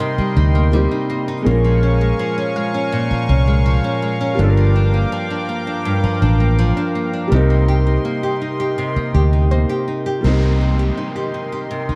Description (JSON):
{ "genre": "contemporary R&B", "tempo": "82 BPM", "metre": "4/4", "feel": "straight", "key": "C minor", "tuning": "A4 = 440 Hz", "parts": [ { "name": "felt-muted upright piano", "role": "accompaniment", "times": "0.0-12.0 s", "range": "G3 to Bb4", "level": "-27 LUFS", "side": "equal", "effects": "none" }, { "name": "warm analog pad", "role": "sustained chords", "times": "0.0-12.0 s", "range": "Bb4 to D6", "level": "-28 LUFS", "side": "equal", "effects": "chorus" }, { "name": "nylon-string guitar", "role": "arpeggios", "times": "0.0-12.0 s", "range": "G2 to G4", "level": "-23 LUFS", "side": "equal", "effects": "tape echo" }, { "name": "glassy wavetable pluck", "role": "texture", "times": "0.0-10.6 s", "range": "Bb4 to F5", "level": "-34 LUFS", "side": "equal", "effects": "none" }, { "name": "vintage muted fingered electric bass", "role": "bass", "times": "0.2-11.9 s", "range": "G1 to D2", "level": "-17 LUFS", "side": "equal", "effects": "none" }, { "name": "downlifter", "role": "sound effects", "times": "10.2-12.0 s", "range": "none", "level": "-32 LUFS", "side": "equal", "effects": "none" } ], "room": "studio reverb", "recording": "dark, warm production", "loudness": "-17 LUFS", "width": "mono", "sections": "0.0-10.2 A section; 10.2-12.0 B section", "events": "none", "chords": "0.0 Cm7; 1.5 Bbm7; 4.4 Gm7; 7.3 Cm7", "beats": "0.00 0.73 | 1.46 2.19 2.93 3.66 | 4.39 5.12 5.85 6.58 | 7.32 8.05 8.78 9.51 | 10.24 10.97 11.71" }